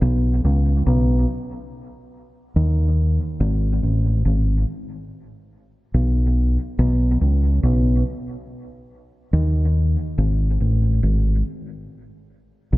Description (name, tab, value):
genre	reggae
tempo	71 BPM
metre	4/4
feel	swing 57% on 16ths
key	unclear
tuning	A4 = 440 Hz
part	fingered electric bass	solo	0.0-12.8 s	G#1 to D#2	-18 LUFS	equal	dub echo
room	moderate echo chamber reverb, RT60 2.3 s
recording	echo-heavy mix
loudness	-17 LUFS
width	side -19 dB against mid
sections	0.0-12.8 A section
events	none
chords	none